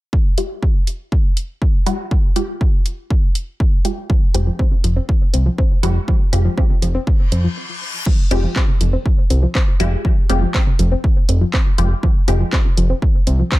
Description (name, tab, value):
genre	melodic techno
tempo	121 BPM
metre	4/4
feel	straight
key	F minor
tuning	A4 = 440 Hz
part	electronic kick drum	drums	0.1-13.6 s	none	-15 LUFS	equal	overdrive
part	filtered dub chord stab	stabs	0.4-13.6 s	Ab3 to G4	-25 LUFS	left 1 dB	phaser, sidechain pumping, tape echo
part	techno drum kit	drums	0.4-13.6 s	crash cymbal, handclaps, hi-hat	-25 LUFS	equal	sidechain pumping on hats, sidechain pumping on cymbals
part	soft round pluck	arpeggios	4.1-13.6 s	C3 to C4	-24 LUFS	equal	chorus, sidechain pumping, tape echo
part	fat analog bass	bass	4.3-13.4 s	F1 to F2	-16 LUFS	equal	sidechain pumping
part	reverse cymbal	sound effects	7.2-8.1 s	none	-27 LUFS	left 4 dB	none
room	little or no reverb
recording	none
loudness	-14 LUFS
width	side -18 dB against mid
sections	0.1-8.1 A section; 8.1-13.6 B section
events	filter sweep on synth stab 0.1-8.1; reverse cymbal 7.2-8.1; stop 7.6-8.1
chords	0.1 Fmadd9